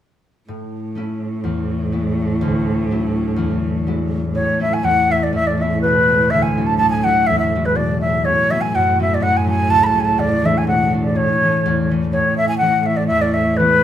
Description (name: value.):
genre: celtic folk.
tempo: 123 BPM.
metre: 2/4.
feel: swing 54% on 8ths.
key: A major.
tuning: A4 = 440 Hz.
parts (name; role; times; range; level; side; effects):
concert harp; accompaniment; 0.5-13.8 s; C#2 to E4; -21 LUFS; left 2 dB; none.
rich cello; drone; 0.5-13.8 s; A2; -21 LUFS; right 1 dB; none.
wooden flute; melody; 4.3-13.8 s; B4 to B5; -16 LUFS; equal; none.
room: wet studio reverb, RT60 0.7 s.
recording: band playing live in one room.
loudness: -15 LUFS.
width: side -10 dB against mid.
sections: 0.5-4.4 A section; 4.4-12.1 B section; 12.1-13.8 B section.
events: none.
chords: 0.5 A; 1.4 E; 2.4 Dadd9; 3.4 Eadd9; 4.4 A; 5.3 E; 6.3 Dadd9; 7.3 Eadd9; 8.3 Bsus2; 9.2 F#m; 10.2 E7; 11.2 A; 13.1 E.